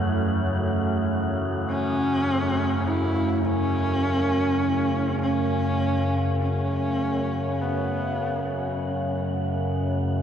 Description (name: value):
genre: dark ambient drone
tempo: free time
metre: none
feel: none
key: unclear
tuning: A4 = 439 Hz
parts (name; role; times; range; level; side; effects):
- deep dark ambient pad; sustained chords; 0.0-10.2 s; A3 to F#5; -30 LUFS; right 4 dB; chorus, built-in reverb
- carillon bells; arpeggios; 0.0-5.2 s; E3; -41 LUFS; left 1 dB; none
- overtone-sweeping drone; drone; 0.0-10.2 s; F#2 to C#3; -25 LUFS; equal; chorus, built-in reverb
- wind-like tuned noise texture; texture; 0.0-10.2 s; F#5; -40 LUFS; left 1 dB; built-in reverb
- clear horsehead fiddle; melody; 1.7-8.8 s; B3 to E4; -26 LUFS; left 1 dB; tape echo
room: wet huge ambient reverb, RT60 8.0 s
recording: dark, warm production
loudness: -22 LUFS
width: side -8 dB against mid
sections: 0.0-2.9 A section; 2.9-10.2 B section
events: none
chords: 0.0 F#m